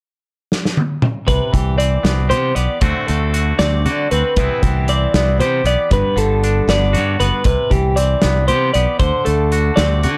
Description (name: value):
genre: math rock and midwest emo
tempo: 78 BPM (dotted quarters)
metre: 6/8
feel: straight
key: C lydian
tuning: A4 = 439 Hz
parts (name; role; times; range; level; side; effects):
- loose indie drum kit; drums; 0.5-10.2 s; hi-hat, kick drum, snare drum, toms; -22 LUFS; equal; none
- twangy electric guitar; accompaniment; 1.3-10.2 s; G2 to G4; -24 LUFS; equal; none
- twelve-string electric guitar; arpeggios; 1.3-10.2 s; G4 to D5; -21 LUFS; equal; none
- modern bright fingered electric bass; bass; 1.3-10.2 s; F#1 to D3; -20 LUFS; equal; none
room: little or no reverb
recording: dark, warm production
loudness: -16 LUFS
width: mono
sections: 0.0-1.3 A section; 1.3-10.2 B section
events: drum fill 0.5-1.3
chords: 0.0 N.C.; 1.3 Cmaj7; 2.8 D7; 4.4 Cmaj7; 5.9 Gmaj7; 7.5 Cmaj7; 9.0 D7